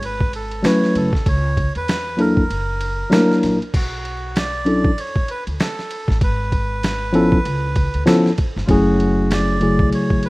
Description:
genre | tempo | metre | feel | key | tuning
hip hop, jazz-hop | 97 BPM | 4/4 | swing 59% on 16ths | B minor | A4 = 440 Hz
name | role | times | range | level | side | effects
melodica | melody | 0.0-10.3 s | E#4 to D5 | -26 LUFS | right 2 dB | none
upright bass | bass | 0.0-9.9 s | F#1 to E2 | -23 LUFS | equal | none
boom bap sampler-style drum kit | drums | 0.0-10.3 s | crash cymbal, hi-hat, kick drum, ride cymbal, snare drum | -21 LUFS | equal | none
mellow tine electric piano | accompaniment | 0.6-10.3 s | C#3 to B4 | -15 LUFS | left 1 dB | overdrive
room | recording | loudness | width
little or no reverb | rough home demo mix, vinyl crackle | -16 LUFS | side -22 dB against mid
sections
0.0-3.7 A section; 3.7-10.3 B section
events
kick muted 2.5-3.7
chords
0.0 F#m9; 1.3 C#m6; 2.5 F#7b13; 3.7 Bm11; 6.2 G#madd11; 7.4 C#7alt; 8.7 F#m9

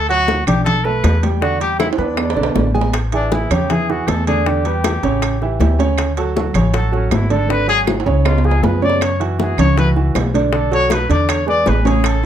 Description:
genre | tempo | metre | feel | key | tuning
Afro-Cuban jazz | 158 BPM | 4/4 | straight | A major | A4 = 439 Hz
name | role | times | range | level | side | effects
mellow trumpet | melody | 0.0-12.2 s | C#4 to D5 | -20 LUFS | left 3 dB | none
clear concert grand piano | accompaniment | 0.0-12.3 s | C#3 to D6 | -20 LUFS | right 4 dB | none
upright bass | bass | 0.0-12.3 s | G#1 to F#2 | -18 LUFS | equal | none
bongos | percussion | 0.1-12.2 s | none | -24 LUFS | left 8 dB | none
congas | percussion | 0.1-12.2 s | none | -22 LUFS | left 2 dB | none
timbales | percussion | 0.1-12.2 s | none | -25 LUFS | right 7 dB | none
claves | percussion | 0.5-12.2 s | none | -29 LUFS | right 11 dB | none
room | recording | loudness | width
light reverb | close, detailed microphones | -14 LUFS | side -10 dB against mid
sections
0.0-2.9 A section; 2.9-12.3 B section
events
drum fill 1.8-2.9, 7.9-9.0; trumpet solo 2.9-12.3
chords
0.0 D; 0.7 Bm7; 1.4 Em7; 2.2 E7; 2.9 Amaj7; 4.5 Em7; 5.2 A7; 6.0 Dmaj7; 7.5 Bm69/G#; 8.3 C#; 9.0 F#5; 10.5 Bm7; 11.3 E7

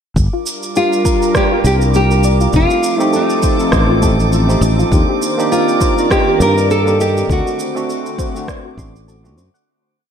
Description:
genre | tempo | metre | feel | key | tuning
sunset chillout | 101 BPM | 4/4 | swing 56% on 16ths | G minor | A4 = 440 Hz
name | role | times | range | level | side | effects
lush unison pad | sustained chords | 0.4-9.7 s | D3 to D5 | -21 LUFS | equal | chorus
sustaining fretless electric bass | bass | 0.2-9.5 s | F1 to G2 | -14 LUFS | equal | none
electronic kick drum | drums | 0.2-8.9 s | none | -17 LUFS | equal | overdrive
electronic shaker and rim click | drums | 0.2-9.6 s | none | -24 LUFS | right 1 dB | none
drifting glass-harmonics texture | texture | 0.4-9.7 s | D6 | -26 LUFS | right 2 dB | chorus, built-in reverb
soft round pluck | arpeggios | 0.3-9.6 s | F4 to C6 | -24 LUFS | left 3 dB | wide subtle chorus, diffuse ambient delay
nylon-string guitar | melody | 0.8-9.0 s | Eb4 to Bb4 | -17 LUFS | right 1 dB | diffuse ambient delay
tine electric piano | accompaniment | 2.5-9.4 s | A3 to G4 | -20 LUFS | right 1 dB | auto-pan, diffuse ambient delay
room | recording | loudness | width
moderate plate reverb, RT60 2.5 s | dreamy mix soaked in reverb | -12 LUFS | side -8 dB against mid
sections
0.2-9.7 groove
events
fade-out 6.5-9.7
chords
0.2 Gm7; 2.5 F7; 4.9 Cm7/Eb; 7.3 D7

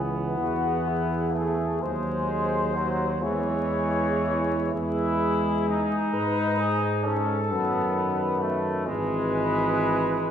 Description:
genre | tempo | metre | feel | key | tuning
classical, hymn-like piece for brass band | 38-44 BPM (dotted quarters) | 6/8 | rubato | C# minor | A4 = 440 Hz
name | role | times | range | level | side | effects
mellow flugelhorn | second line | 0.0-10.3 s | G#4 to B#4 | -32 LUFS | right 4 dB | none
clear trombone section | accompaniment | 0.0-10.3 s | E3 to E4 | -28 LUFS | left 1 dB | none
mellow euphonium | accompaniment | 0.0-10.3 s | D#3 to G#3 | -31 LUFS | right 2 dB | none
warm tuba | bass | 0.0-10.3 s | G#1 to G#2 | -29 LUFS | right 1 dB | none
mellow cornet | melody | 0.4-10.3 s | E4 to C#5 | -30 LUFS | left 4 dB | none
room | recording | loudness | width
wet recital hall reverb, RT60 1.5 s | recorded in a church or concert hall, vinyl crackle | -23 LUFS | side -9 dB against mid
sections
0.0-10.3 A section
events
none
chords
0.0 C#m; 1.8 G#7/D#; 3.2 C#m/E; 4.7 E; 7.5 B7/F#; 8.9 E/G#

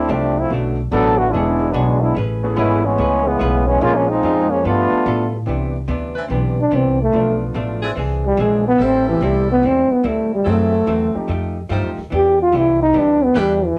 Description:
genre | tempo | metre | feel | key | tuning
jazz, big band swing | 145 BPM | 4/4 | swing 66% on 8ths | unclear | A4 = 441 Hz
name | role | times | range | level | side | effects
clear trombone section | second line | 0.0-5.3 s | C#3 to A4 | -18 LUFS | equal | none
upright bass | bass | 0.0-13.8 s | E1 to A2 | -24 LUFS | equal | transformer saturation
vintage hollow-body jazz guitar | accompaniment | 0.1-13.7 s | F#2 to C#5 | -29 LUFS | equal | none
warm grand piano | accompaniment | 0.5-13.2 s | D3 to G#4 | -29 LUFS | equal | none
clear saxophone section | sustained chords | 6.2-13.5 s | E3 to C5 | -30 LUFS | equal | none
breathy trombone | melody | 6.6-13.8 s | E3 to G4 | -17 LUFS | equal | cassette tape
room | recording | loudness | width
moderate studio ambience, RT60 0.5 s | home recording on cassette, lossy compression artefacts | -17 LUFS | mono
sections
0.0-5.5 A section; 5.5-13.8 B section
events
trombone section solo 0.0-5.5; trombone solo 5.5-13.8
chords
0.0 F69; 0.5 Bm7; 1.3 E13; 2.2 Amaj9; 3.8 Bbm7; 4.7 G9; 5.5 Cmaj9; 7.1 Bm7b5; 8.0 Eaug7; 8.8 Am7; 10.5 F#m7b5; 11.3 F9; 12.1 Em7

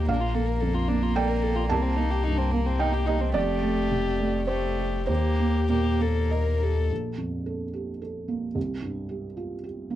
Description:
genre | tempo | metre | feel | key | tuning
neoclassical piano and strings | 97-113 BPM | 3/4 | rubato | unclear | A4 = 440 Hz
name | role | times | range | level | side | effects
dark violin | melody | 0.0-6.9 s | Bb3 to Bb4 | -30 LUFS | left 8 dB | none
clear cello | second line | 0.0-6.7 s | A3 to Bb3 | -32 LUFS | right 4 dB | none
felt-muted upright piano | accompaniment | 0.0-10.0 s | Bb1 to A5 | -28 LUFS | right 4 dB | none
warm sub bass | bass | 0.0-6.9 s | F1 to Eb2 | -27 LUFS | left 1 dB | none
room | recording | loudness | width
little or no reverb | dry, close 1970s-style studio recording | -24 LUFS | side -13 dB against mid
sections
0.0-6.9 A section; 6.9-10.0 B section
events
none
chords
0.1 Bbmaj7; 1.7 Cm7; 3.3 Fadd9; 5.1 Eb; 6.9 Bb5; 8.6 C5

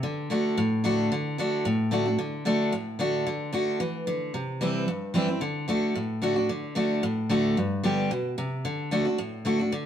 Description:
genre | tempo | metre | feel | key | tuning
bluegrass | 223 BPM | 4/4 | swing 53% on 8ths | D mixolydian | A4 = 440 Hz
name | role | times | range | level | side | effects
picked steel-string acoustic guitar | solo | 0.0-9.9 s | G2 to G4 | -24 LUFS | equal | none
room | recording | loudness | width
moderate studio reverb, RT60 0.9 s | band playing live in one room | -24 LUFS | side -9 dB against mid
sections
0.0-6.5 A section; 6.5-9.9 A section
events
none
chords
0.0 D; 4.3 C; 5.4 D; 7.6 G; 8.7 D

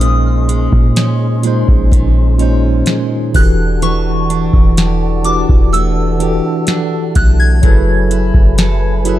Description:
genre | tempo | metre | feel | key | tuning
contemporary R&B | 63 BPM | 4/4 | straight | unclear | A4 = 440 Hz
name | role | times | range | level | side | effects
soft synth bell | melody | 0.0-9.2 s | C#6 to G#6 | -21 LUFS | left 1 dB | chorus, phaser
tine electric piano | accompaniment | 0.0-9.2 s | A#2 to B#4 | -17 LUFS | equal | medium stereo tremolo
breathy mellow large flute ensemble | sustained chords | 0.0-9.2 s | C#4 to B#5 | -26 LUFS | equal | sidechain pumping
picked steel-string acoustic guitar | arpeggios | 0.0-9.2 s | A#2 to A4 | -21 LUFS | right 7 dB | none
warm 808-style bass | bass | 0.0-9.2 s | E1 to A#2 | -14 LUFS | equal | none
booming analog drum machine | drums | 0.0-9.2 s | hi-hat, kick drum, snare drum | -12 LUFS | equal | none
room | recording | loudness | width
little or no reverb | dark, warm production | -10 LUFS | side -14 dB against mid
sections
0.0-9.2 A section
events
none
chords
0.0 A#m11; 3.3 Em11; 7.6 F#m11

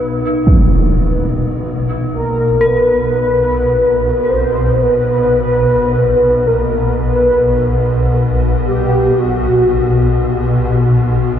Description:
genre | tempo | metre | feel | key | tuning
dark ambient drone | 55 BPM | 4/4 | straight | B major | A4 = 436 Hz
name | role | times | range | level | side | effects
mellow horn-like synth lead | melody | 0.0-10.3 s | F#4 to C5 | -14 LUFS | equal | ensemble chorus, diffuse ambient delay
dark detuned synth bell | arpeggios | 0.0-11.4 s | D#4 to A#4 | -22 LUFS | left 2 dB | chorus, tremolo, diffuse ambient delay
swarming drone | drone | 0.0-11.4 s | B1 to B2 | -16 LUFS | equal | built-in reverb
impact | percussion | 0.5-0.7 s | none | -14 LUFS | right 1 dB | low-pass filter on sfx
room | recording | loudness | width
wet huge ambient reverb, RT60 9.4 s | cassette tape | -11 LUFS | side -9 dB against mid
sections
0.0-11.4 A section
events
fade-in on synth drone 0.0-11.4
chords
0.0 B

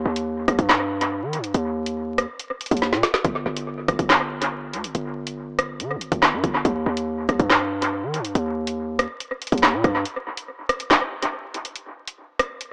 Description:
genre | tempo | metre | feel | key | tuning
hip hop, drill | 141 BPM | 4/4 | half-time | unclear | A4 = 444 Hz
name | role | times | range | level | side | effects
hard-hitting 808-style bass | bass | 0.0-10.0 s | G1 to Eb3 | -28 LUFS | equal | none
drill drum kit | drums | 0.2-12.7 s | handclaps, hi-hat, kick drum, rim click, snare drum | -24 LUFS | equal | analog delay
room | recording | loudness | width
moderate spring reverb, RT60 1.9 s | echo-heavy mix, vinyl crackle, small speaker sound | -23 LUFS | mono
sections
0.0-12.7 A section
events
drum fill 2.8-3.2; break 10.1-12.7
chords
none

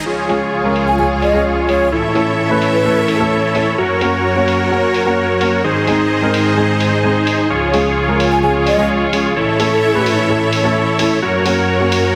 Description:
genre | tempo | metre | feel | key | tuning
EDM, festival progressive house | 129 BPM | 4/4 | straight | unclear | A4 = 440 Hz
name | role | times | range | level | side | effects
clear studio string section | sustained chords | 0.0-12.2 s | Db2 to E5 | -23 LUFS | equal | none
dense compressed supersaw | riff | 0.0-12.2 s | Eb4 to Db5 | -18 LUFS | equal | low-pass filter, dub echo
dark concert grand piano | accompaniment | 0.3-12.1 s | Ab3 to Db5 | -21 LUFS | equal | dub echo
electronic hi-hat | drums | 0.3-12.0 s | none | -28 LUFS | equal | low-pass filter on hats, low-pass filter on perc, low-pass filter on snare
mellow hollow concert flute | melody | 0.9-3.2, 8.3-10.2 s | A4 to Ab5 | -22 LUFS | equal | dub echo
room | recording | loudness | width
moderate lush hall reverb, RT60 1.9 s, studio reverb | dense, heavily limited modern master | -15 LUFS | mono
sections
0.1-12.2 A section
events
none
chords
0.1 Db; 1.9 A; 3.8 Gb; 5.6 Ab; 7.5 Db; 9.4 A; 11.2 Gb

